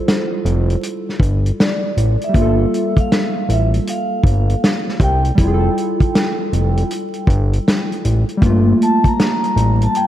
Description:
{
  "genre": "lo-fi hip hop",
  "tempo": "79 BPM",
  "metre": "4/4",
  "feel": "swing 65% on 16ths",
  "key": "G dorian",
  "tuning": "A4 = 440 Hz",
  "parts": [
    { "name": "vibraphone with soft mallets", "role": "melody", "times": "0.0-10.1 s", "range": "C5 to Bb5", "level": "-23 LUFS", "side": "right 1 dB", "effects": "none" },
    { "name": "warbly lo-fi synth keys", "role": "accompaniment", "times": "0.0-10.1 s", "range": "G3 to A4", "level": "-20 LUFS", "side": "equal", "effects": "chorus, cassette tape" },
    { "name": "warm soul drum kit", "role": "drums", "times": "0.1-10.1 s", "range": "hi-hat, kick drum, snare drum", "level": "-18 LUFS", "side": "equal", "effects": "none" },
    { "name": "fat analog bass", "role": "bass", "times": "0.5-9.9 s", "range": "F1 to C2", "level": "-15 LUFS", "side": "equal", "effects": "none" }
  ],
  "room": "moderate plate reverb, RT60 2.4 s",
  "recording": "dreamy mix soaked in reverb, vinyl crackle",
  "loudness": "-14 LUFS",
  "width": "side -12 dB against mid",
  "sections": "0.0-10.1 A section",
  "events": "none",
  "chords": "0.0 Fmaj9; 2.3 Gm9; 5.4 Fmaj9; 8.4 Gm9",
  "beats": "0.06 0.82 1.58 | 2.34 3.10 3.86 4.62 | 5.38 6.14 6.90 7.66 | 8.42 9.18 9.94"
}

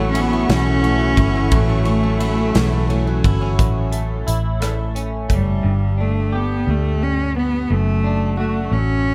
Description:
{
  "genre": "six-eight pop ballad",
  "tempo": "58 BPM (dotted quarters)",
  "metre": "6/8",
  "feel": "straight",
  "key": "unclear",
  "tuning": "A4 = 440 Hz",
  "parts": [
    { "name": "clear cello", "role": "melody", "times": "0.0-9.1 s", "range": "G3 to C#4", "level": "-24 LUFS", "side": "equal", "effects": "tape echo" },
    { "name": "direct-recorded clean electric guitar", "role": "accompaniment", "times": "0.0-9.1 s", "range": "F#2 to G4", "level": "-28 LUFS", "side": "equal", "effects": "double-tracked" },
    { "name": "dark studio string section", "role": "sustained chords", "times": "0.0-3.6 s", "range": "E4 to C#6", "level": "-29 LUFS", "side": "equal", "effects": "none" },
    { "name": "picked steel-string acoustic guitar", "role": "arpeggios", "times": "0.0-4.2 s", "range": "E3 to F#4", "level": "-27 LUFS", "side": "equal", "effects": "none" },
    { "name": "vintage muted fingered electric bass", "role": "bass", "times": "0.0-9.1 s", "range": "F#1 to D2", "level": "-22 LUFS", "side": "equal", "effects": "none" },
    { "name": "modern studio drum kit", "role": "drums", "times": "0.1-5.5 s", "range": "hi-hat, kick drum, ride cymbal, rim click, snare drum", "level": "-24 LUFS", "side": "equal", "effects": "none" }
  ],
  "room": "studio reverb",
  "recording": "none",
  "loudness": "-18 LUFS",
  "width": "mono",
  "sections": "0.0-3.6 A section; 3.6-5.6 B section; 5.6-9.1 C section",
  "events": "none",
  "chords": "0.0 F#m7; 3.6 F#m7/A; 5.6 G; 7.7 Dmaj7/F#",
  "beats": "0.49 | 1.52 2.55 | 3.59 4.61 | 5.64 6.67 | 7.70 8.72"
}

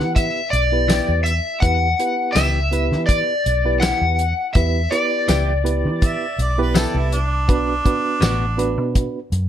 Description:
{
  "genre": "straight-eighth soul blues",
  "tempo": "82 BPM",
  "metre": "4/4",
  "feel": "straight",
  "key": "unclear",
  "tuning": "A4 = 440 Hz",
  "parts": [
    { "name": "overdriven slide guitar", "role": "melody", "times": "0.0-7.1 s", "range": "D5 to F#5", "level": "-21 LUFS", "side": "left 3 dB", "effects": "slapback echo, plate reverb" },
    { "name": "bright reed electric piano", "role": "accompaniment", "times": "0.0-9.2 s", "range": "B3 to B4", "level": "-25 LUFS", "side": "right 5 dB", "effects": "fast tremolo, plate reverb" },
    { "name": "vintage muted fingered electric bass", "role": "bass", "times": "0.0-9.5 s", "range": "A1 to E3", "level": "-21 LUFS", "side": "equal", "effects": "none" },
    { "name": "warm soul drum kit", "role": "drums", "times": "0.0-9.5 s", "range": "hi-hat, kick drum, snare drum, tambourine", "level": "-19 LUFS", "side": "equal", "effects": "none" },
    { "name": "direct-recorded clean electric guitar", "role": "stabs", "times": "0.9-8.5 s", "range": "B2 to G4", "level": "-26 LUFS", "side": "left 6 dB", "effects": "plate reverb" },
    { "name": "mellow harmonica", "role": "second line", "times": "6.0-8.9 s", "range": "D4 to E5", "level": "-24 LUFS", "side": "right 3 dB", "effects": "slapback echo" }
  ],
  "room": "light reverb",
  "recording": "none",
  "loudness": "-16 LUFS",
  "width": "side -10 dB against mid",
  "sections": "0.0-9.5 A section",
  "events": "none",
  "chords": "0.0 Em; 7.5 Bm",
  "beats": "0.16 0.89 | 1.62 2.36 3.09 3.82 | 4.56 5.29 6.02 6.75 | 7.49 8.22 8.95"
}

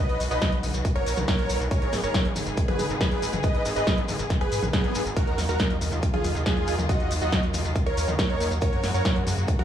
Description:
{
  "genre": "uplifting trance",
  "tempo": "139 BPM",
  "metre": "4/4",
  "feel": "straight",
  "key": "Eb minor",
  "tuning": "A4 = 440 Hz",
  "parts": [
    { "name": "dense compressed supersaw", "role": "melody", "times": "0.0-9.6 s", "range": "Cb4 to D#5", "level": "-29 LUFS", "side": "right 1 dB", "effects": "sidechain pumping, digital delay" },
    { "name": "dark studio string section", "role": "sustained chords", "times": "0.0-9.6 s", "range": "Db3 to Ab4", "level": "-34 LUFS", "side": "equal", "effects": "sidechain pumping" },
    { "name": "gritty driven synth bass", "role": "bass", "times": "0.1-9.6 s", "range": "F#1 to Ab2", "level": "-29 LUFS", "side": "equal", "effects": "sidechain pumping" },
    { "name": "punchy analog drum machine", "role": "drums", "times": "0.1-9.6 s", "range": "hi-hat, snare drum, toms", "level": "-30 LUFS", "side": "equal", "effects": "none" },
    { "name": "maracas", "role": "percussion", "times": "0.2-9.6 s", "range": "none", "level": "-38 LUFS", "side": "left 2 dB", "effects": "none" },
    { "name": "electronic kick drum", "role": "drums", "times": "0.4-9.6 s", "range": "none", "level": "-26 LUFS", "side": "equal", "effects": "none" }
  ],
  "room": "light reverb",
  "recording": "small room ambience",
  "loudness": "-22 LUFS",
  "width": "side -10 dB against mid",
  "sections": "0.0-9.6 A section",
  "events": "none",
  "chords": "0.0 B; 1.7 Abm; 5.2 Ebmadd9; 8.6 Gb",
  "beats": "0.42 0.85 1.28 | 1.71 2.14 2.58 3.01 | 3.44 3.87 4.30 4.73 | 5.17 5.60 6.03 6.46 | 6.89 7.32 7.76 8.19 | 8.62 9.05 9.48"
}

